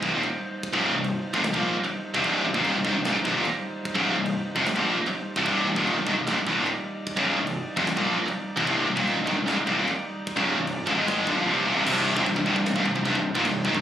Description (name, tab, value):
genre	heavy metal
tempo	150 BPM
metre	4/4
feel	straight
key	C minor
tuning	A4 = 441 Hz
part	pipe organ, foundations	sustained chords	0.0-13.8 s	G3 to D5	-34 LUFS	right 1 dB	none
part	heavy high-gain guitar	riff	0.0-13.8 s	C2 to Bb3	-26 LUFS	right 6 dB	distortion
part	high-gain distorted guitar	riff	0.0-13.8 s	C2 to Bb3	-26 LUFS	left 5 dB	distortion
part	fuzz picked electric bass	bass	0.0-13.8 s	C1 to Bb1	-32 LUFS	equal	overdrive
part	tight metal drum kit	drums	0.0-13.8 s	china cymbal, crash cymbal, kick drum, snare drum	-34 LUFS	equal	none
part	tight distorted guitar	riff	5.5-13.8 s	C2 to Bb3	-32 LUFS	left 1 dB	none
room	light reverb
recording	recorded on a phone in the room, club reverb, compression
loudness	-22 LUFS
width	side -10 dB against mid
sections	0.0-11.9 A section; 11.9-13.8 B section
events	none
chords	0.0 Cm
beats	0.22 | 0.63 1.03 1.44 1.84 | 2.24 2.65 3.05 3.45 | 3.85 4.26 4.66 5.06 | 5.46 5.87 6.27 6.67 | 7.07 7.47 7.87 8.27 | 8.67 9.07 9.47 9.87 | 10.27 10.67 11.06 11.46 | 11.86 12.26 12.66 13.05 | 13.45